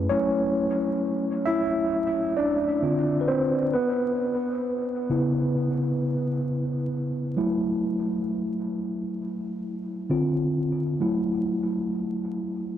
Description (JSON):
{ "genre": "hip hop", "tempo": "66 BPM", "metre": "4/4", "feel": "swing 59% on 16ths", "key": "F# minor", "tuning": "A4 = 440 Hz", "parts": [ { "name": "mellow tine electric piano", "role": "solo", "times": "0.0-12.8 s", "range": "F#2 to E5", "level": "-24 LUFS", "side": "equal", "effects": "medium stereo tremolo, cassette tape, dub echo" } ], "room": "light reverb", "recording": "echo-heavy mix, vinyl crackle", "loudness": "-24 LUFS", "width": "side -10 dB against mid", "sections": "0.1-12.8 A section", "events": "tine electric piano solo 0.1-12.8", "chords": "0.1 F#m7; 2.8 Dm7; 3.7 C#m7; 7.4 F#m7; 10.1 Dm7; 11.0 F#m7", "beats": "| 0.10 1.00 1.91 2.82 | 3.73 4.64 5.55 6.46 | 7.37 8.28 9.19 10.10 | 11.00 11.91" }